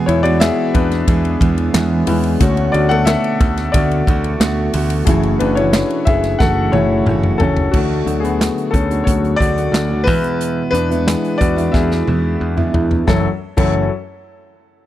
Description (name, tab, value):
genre	piano-driven pop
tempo	90 BPM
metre	4/4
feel	straight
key	F# minor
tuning	A4 = 443 Hz
part	fingerpicked steel-string acoustic guitar	riff	0.0-13.8 s	E2 to G#4	-20 LUFS	right 5 dB	none
part	warm grand piano	accompaniment	0.1-13.9 s	F#2 to F#5	-18 LUFS	left 4 dB	none
part	picked electric bass	bass	0.1-13.9 s	F#1 to E2	-19 LUFS	equal	none
part	natural country drum kit	drums	0.1-13.7 s	crash cymbal, handclaps, hi-hat, kick drum, ride cymbal, snare drum, toms	-18 LUFS	equal	none
room	studio reverb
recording	dry, close 1970s-style studio recording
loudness	-13 LUFS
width	side -13 dB against mid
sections	0.0-7.7 A section; 7.7-13.1 B section; 13.1-14.9 C section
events	grand piano solo 0.0-7.7, 7.7-13.1; drum fill 6.4-7.7, 11.7-13.1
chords	0.0 E; 2.4 Bm7/D; 5.1 F#m7; 7.7 D; 10.1 E; 13.1 F#m7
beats	0.41 1.08 1.75 | 2.41 3.08 3.74 4.41 | 5.08 5.74 6.41 7.07 | 7.74 8.41 9.07 9.74 | 10.41 11.07 11.74 12.41 | 13.07 13.74